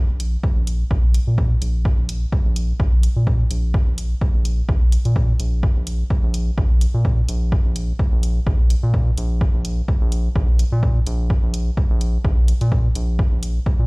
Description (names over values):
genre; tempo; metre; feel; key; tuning
dub techno; 127 BPM; 4/4; swing 55% on 16ths; unclear; A4 = 440 Hz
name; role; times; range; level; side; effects
round analog bass; bass; 0.1-13.9 s; Bb1 to Bb2; -20 LUFS; equal; sidechain pumping
electronic hi-hat; drums; 0.2-13.5 s; none; -34 LUFS; equal; none
electronic kick drum; drums; 0.4-13.8 s; none; -19 LUFS; equal; none
room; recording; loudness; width
little or no reverb; played on a big sound system in a bare room, stone room reverb; -17 LUFS; side -30 dB against mid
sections
0.0-13.9 A section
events
none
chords
none